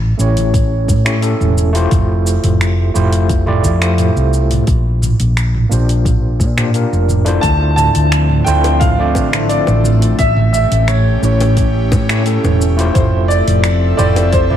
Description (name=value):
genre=sunset chillout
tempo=87 BPM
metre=4/4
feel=straight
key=unclear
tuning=A4 = 442 Hz
part: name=hollow-body short-scale fingered electric bass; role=bass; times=0.0-14.6 s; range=E1 to Bb2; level=-14 LUFS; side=equal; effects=none
part: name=overdriven tine electric piano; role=accompaniment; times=0.2-14.6 s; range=A3 to D5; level=-19 LUFS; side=equal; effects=fast tremolo, auto-pan, tape echo
part: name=smooth R&B drum kit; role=drums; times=0.2-14.6 s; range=finger snaps, hi-hat, shaker, toms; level=-20 LUFS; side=right 2 dB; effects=overdrive
part: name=electronic kick drum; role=drums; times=0.5-14.5 s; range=none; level=-17 LUFS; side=equal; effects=overdrive
part: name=warm grand piano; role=melody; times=7.4-14.6 s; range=C5 to A5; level=-18 LUFS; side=equal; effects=lush chorus, tape echo
part: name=airy breathy pad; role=sustained chords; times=8.0-14.6 s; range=D3 to E5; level=-22 LUFS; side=right 1 dB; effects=chorus
part: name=bongos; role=percussion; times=8.6-14.3 s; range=none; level=-26 LUFS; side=left 3 dB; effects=none
room=light reverb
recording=none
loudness=-11 LUFS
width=side -10 dB against mid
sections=0.0-14.6 A section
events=none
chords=0.0 A7; 1.9 Fmaj7; 4.7 Bb6; 7.4 Dm7; 10.2 A7; 12.9 Fmaj7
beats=0.53 1.22 | 1.91 2.60 3.29 3.98 | 4.67 5.36 6.05 6.74 | 7.43 8.12 8.81 9.50 | 10.19 10.88 11.57 12.26 | 12.95 13.64 14.33